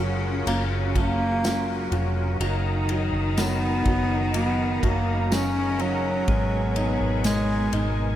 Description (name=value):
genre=pop ballad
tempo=62 BPM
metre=4/4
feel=straight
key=unclear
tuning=A4 = 440 Hz
part: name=bright chamber cello section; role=second line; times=0.0-8.2 s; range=B2 to D#4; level=-31 LUFS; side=left 2 dB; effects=tape echo
part: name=warm grand piano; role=accompaniment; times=0.0-8.2 s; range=F#3 to D#4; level=-32 LUFS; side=right 3 dB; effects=lush chorus
part: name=percussive tonewheel organ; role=sustained chords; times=0.0-8.2 s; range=B2 to A#5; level=-33 LUFS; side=left 1 dB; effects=overdrive, chorus vibrato, wide subtle chorus
part: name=vintage muted fingered electric bass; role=bass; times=0.0-8.2 s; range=E#1 to G#1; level=-26 LUFS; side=equal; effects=none
part: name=warm bass clarinet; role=melody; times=0.5-7.9 s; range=F#3 to C#4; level=-27 LUFS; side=equal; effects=tape echo
part: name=unplugged drum kit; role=drums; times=0.5-8.0 s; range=kick drum, ride cymbal, snare drum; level=-30 LUFS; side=equal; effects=none
part: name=tambourine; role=percussion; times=1.4-7.5 s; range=none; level=-43 LUFS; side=right 2 dB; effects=none
room=moderate huge ambient reverb, RT60 5.2 s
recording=dreamy mix soaked in reverb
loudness=-21 LUFS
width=side -12 dB against mid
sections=0.0-8.2 A section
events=none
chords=0.0 F#maj7; 2.4 Bmaj7/F#; 6.3 G#madd9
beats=0.47 1.44 | 2.41 3.37 4.34 5.31 | 6.28 7.25